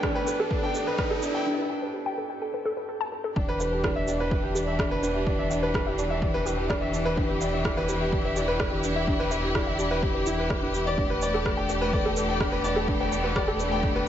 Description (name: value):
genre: piano and strings electronica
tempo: 126 BPM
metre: 4/4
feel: straight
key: unclear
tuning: A4 = 435 Hz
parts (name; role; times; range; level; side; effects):
- rich studio string section; sustained chords; 0.0-14.1 s; E3 to G4; -31 LUFS; left 2 dB; sidechain pumping, shimmer reverb
- warbly dusty pluck; arpeggios; 0.0-14.0 s; D4 to A5; -34 LUFS; left 2 dB; chorus, sidechain pumping, tape echo, shimmer reverb
- warm upright piano; riff; 0.0-14.1 s; D4 to G5; -28 LUFS; right 1 dB; tape echo, shimmer reverb
- electronic kick drum; drums; 0.0-13.9 s; none; -30 LUFS; equal; overdrive
- electronic rim click and shaker; drums; 0.0-13.7 s; none; -33 LUFS; right 2 dB; none
- riser; sound effects; 0.0-1.5 s; none; -35 LUFS; equal; none
- round analog bass; bass; 3.4-14.1 s; E1; -32 LUFS; equal; sidechain pumping
room: moderate lush hall reverb, RT60 1.5 s, digital ambience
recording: nothing above 7.8 kHz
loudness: -24 LUFS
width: side -10 dB against mid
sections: 0.0-3.4 A section; 3.4-14.1 B section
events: build-up 0.0-3.4; riser 0.0-1.5; filter sweep on synth arpeggio sound 0.0-3.4; break 1.5-3.4; drop 3.4-14.1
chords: 0.0 Gadd9/E; 3.4 Em7; 11.0 Gadd9/E